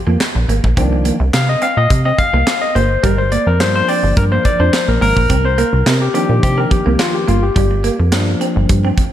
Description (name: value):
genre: early-eighties boogie funk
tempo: 106 BPM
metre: 4/4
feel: straight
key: C minor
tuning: A4 = 440 Hz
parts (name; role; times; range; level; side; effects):
- semi-hollow electric guitar; riff; 0.1-9.0 s; G3 to D4; -22 LUFS; right 4 dB; analog chorus
- plucky analog bass; bass; 0.1-8.9 s; G1 to C3; -15 LUFS; equal; none
- modern studio drum kit; drums; 0.2-9.1 s; handclaps, hi-hat, kick drum, snare drum; -18 LUFS; equal; none
- barky tine electric piano; accompaniment; 0.8-8.9 s; Eb3 to F5; -17 LUFS; left 2 dB; overdrive
room: light reverb, small room reverb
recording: none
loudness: -12 LUFS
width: side -11 dB against mid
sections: 0.0-9.1 A section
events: tine electric piano solo 0.0-9.1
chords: 0.0 Gm7 (rootless); 0.8 Cm11; 2.8 Gm7; 5.3 Cm11; 7.3 Gm7